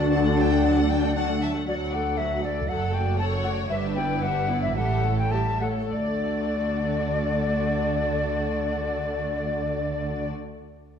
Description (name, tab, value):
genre	quick classical-period movement for symphony orchestra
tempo	98-120 BPM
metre	4/4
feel	rubato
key	D major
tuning	A4 = 441 Hz
part	rich studio violin section	melody	0.0-10.3 s	C#5 to A5	-37 LUFS	left 5 dB	none
part	bright silver concert flute	second line	0.0-10.3 s	D5 to A5	-28 LUFS	left 3 dB	none
part	dark clarinet	second line	0.0-1.4 s	F#4	-33 LUFS	equal	none
part	rich studio violin section	second line	0.0-10.3 s	F#4 to G5	-35 LUFS	left 4 dB	none
part	rich studio viola section	accompaniment	0.0-10.3 s	F#3 to A4	-31 LUFS	equal	none
part	warm French horn section	sustained chords	0.0-1.4 s	D3	-26 LUFS	left 7 dB	none
part	rich studio double bass section	bass	0.0-10.3 s	F#1 to D2	-29 LUFS	right 3 dB	none
part	warm chamber cello section	bass	0.0-10.3 s	D2 to D4	-30 LUFS	right 2 dB	none
room	moderate scoring stage reverb, RT60 1.6 s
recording	dark, warm production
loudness	-22 LUFS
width	side -7 dB against mid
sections	0.0-1.7 A section; 1.7-5.9 B section; 5.9-10.7 C section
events	slowing down 0.6-5.9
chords	0.0 D; 2.7 D/F#; 3.7 Em7/G; 4.8 A7; 5.9 D